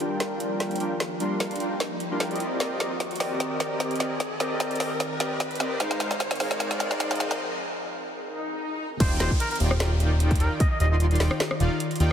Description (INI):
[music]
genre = future bass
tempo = 150 BPM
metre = 4/4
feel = swing 54% on 16ths, half-time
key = Eb major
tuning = A4 = 440 Hz
[part]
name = ethereal airy pad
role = sustained chords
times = 0.0-12.1 s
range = Eb3 to D5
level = -37 LUFS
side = left 1 dB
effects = ensemble chorus, built-in reverb, sidechain pumping
[part]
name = soft supersaw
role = riff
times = 0.0-12.1 s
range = Eb3 to C6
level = -29 LUFS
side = equal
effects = sidechain pumping, low-pass filter, dub echo
[part]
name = trap drum kit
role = drums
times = 0.0-12.1 s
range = crash cymbal, hi-hat, rim click, snare drum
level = -30 LUFS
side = equal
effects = high-pass filter on hats, high-pass filter on snare, high-pass filter on cymbals
[part]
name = riser, swell and downlifter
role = sound effects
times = 0.0-12.1 s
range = none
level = -35 LUFS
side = equal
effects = none
[part]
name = trumpet with straight mute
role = melody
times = 9.0-11.0 s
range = Bb4 to Eb5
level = -32 LUFS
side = equal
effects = sidechain pumping, ping-pong delay
[part]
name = fat analog bass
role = bass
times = 9.0-12.1 s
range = Eb1 to Eb2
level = -22 LUFS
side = equal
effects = sidechain pumping
[part]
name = electronic kick drum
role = drums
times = 9.0-10.7 s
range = none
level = -22 LUFS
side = equal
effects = none
[sound]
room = moderate huge ambient reverb, RT60 4.5 s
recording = heavily compressed radio sound, multiband compression, high-pass filter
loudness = -24 LUFS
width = side -9 dB against mid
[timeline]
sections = 0.0-9.0 A section; 9.0-12.1 B section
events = build-up 0.0-9.0; drum fill 0.0-7.4; riser 0.0-7.4; filter sweep on supersaw synth 0.0-9.0; break 7.4-9.0; swell 8.2-9.0; drop 9.0-12.1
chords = 0.0 Gm7; 2.4 Cm9; 5.8 Ab69; 9.0 Ebmaj9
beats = 0.20 0.60 | 1.00 1.40 1.80 2.20 | 2.60 3.00 3.40 3.80 | 4.20 4.60 5.00 5.40 | 5.80 6.20 6.60 7.00 | 7.40 7.80 8.20 8.60 | 9.00 9.40 9.80 10.20 | 10.60 11.00 11.40 11.80